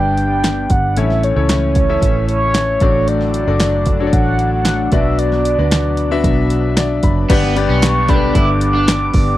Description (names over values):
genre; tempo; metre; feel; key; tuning
piano-driven pop; 114 BPM; 4/4; straight; unclear; A4 = 440 Hz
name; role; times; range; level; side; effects
mellow horn-like synth lead; melody; 0.0-9.4 s; C#5 to D6; -19 LUFS; right 1 dB; chorus
bright upright piano; accompaniment; 0.0-9.4 s; G2 to B5; -20 LUFS; left 6 dB; none
chorused pulse-width pad; sustained chords; 0.0-9.4 s; E3 to D4; -23 LUFS; equal; none
vintage muted fingered electric bass; bass; 0.0-9.4 s; F#1 to D2; -18 LUFS; equal; none
deep house drum kit; drums; 0.2-9.3 s; crash cymbal, handclaps, hi-hat, kick drum, snare drum; -17 LUFS; equal; none
overdriven semi-hollow guitar; riff; 7.3-8.9 s; B3 to E4; -22 LUFS; right 6 dB; none
room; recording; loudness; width
little or no reverb; dry, close 1970s-style studio recording; -12 LUFS; side -14 dB against mid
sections
0.0-7.3 A section; 7.3-9.4 B section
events
upright piano fill 6.5-7.3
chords
0.0 G; 1.0 A; 2.8 D; 4.9 Bm; 7.3 G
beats
0.44 | 0.97 1.50 2.02 2.55 | 3.08 3.61 4.13 4.66 | 5.19 5.72 6.25 6.77 | 7.30 7.83 8.35 8.88